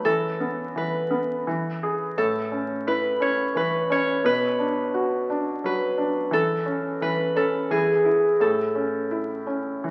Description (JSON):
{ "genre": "children's music, lullaby", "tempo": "86 BPM", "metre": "3/4", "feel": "rubato", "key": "A major", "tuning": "A4 = 440 Hz", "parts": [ { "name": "Celtic harp", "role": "melody", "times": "0.0-9.9 s", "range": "G#4 to C#5", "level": "-26 LUFS", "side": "equal", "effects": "none" }, { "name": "felt-muted upright piano", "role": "accompaniment", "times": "0.0-9.9 s", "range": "A2 to G#4", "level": "-29 LUFS", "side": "equal", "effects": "none" } ], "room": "wet large studio reverb, RT60 1.3 s", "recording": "very old 78 rpm record, vinyl crackle", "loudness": "-24 LUFS", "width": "mono", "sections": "0.0-9.9 A section", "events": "none", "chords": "0.0 Esus4; 1.5 E; 2.2 A; 4.3 Bm; 6.3 A/E; 7.7 N.C.; 8.4 A", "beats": "| 0.04 0.75 1.47 | 2.18 2.88 3.57 | 4.26 4.95 5.64 | 6.32 7.00 7.70 | 8.40 9.11 9.84" }